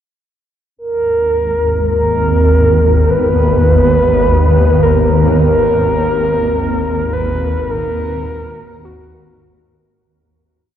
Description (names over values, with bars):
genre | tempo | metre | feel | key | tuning
dark ambient drone | 52 BPM | 4/4 | straight | G# minor | A4 = 440 Hz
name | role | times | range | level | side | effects
mellow horn-like synth lead | melody | 0.8-9.7 s | F#4 to B4 | -15 LUFS | equal | chorus, ping-pong delay
granular cloud pad | sustained chords | 1.5-10.0 s | G#2 to F#4 | -21 LUFS | equal | built-in reverb
swarming drone | drone | 1.2-10.1 s | G#1 to D#2 | -14 LUFS | equal | built-in reverb
room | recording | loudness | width
moderate huge ambient reverb, RT60 8.6 s | worn, warbling old tape, cassette tape, warbly pitch drift | -11 LUFS | side -10 dB against mid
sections
0.8-10.0 A section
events
fade-out on ambient pad 0.8-10.0; fade-out 5.4-10.0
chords
0.8 G#madd9; 5.4 D#m/G#